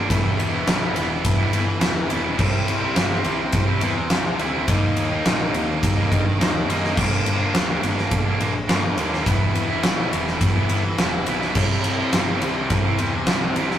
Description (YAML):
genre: quiet-loud alternative rock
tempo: 105 BPM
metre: 4/4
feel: straight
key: unclear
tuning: A4 = 440 Hz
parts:
  - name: overdriven semi-hollow guitar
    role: riff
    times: 0.0-13.8 s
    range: G2 to E4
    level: -28 LUFS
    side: left 5 dB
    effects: none
  - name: tight distorted guitar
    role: riff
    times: 0.0-13.8 s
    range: G2 to E4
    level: -25 LUFS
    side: right 5 dB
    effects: distortion
  - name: fuzz picked electric bass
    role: bass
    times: 0.0-13.8 s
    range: E1 to G2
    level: -28 LUFS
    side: equal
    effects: overdrive
  - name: big rock drum kit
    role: drums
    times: 0.1-13.8 s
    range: crash cymbal, kick drum, ride cymbal, snare drum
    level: -21 LUFS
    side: equal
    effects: none
room: moderate studio ambience, RT60 0.5 s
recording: rough rehearsal-room recording, tube saturation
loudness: -18 LUFS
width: side -10 dB against mid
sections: 0.0-13.8 A section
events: none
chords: 0.1 Em; 2.4 C; 4.7 Eb; 7.0 Gm; 9.3 Em; 11.6 C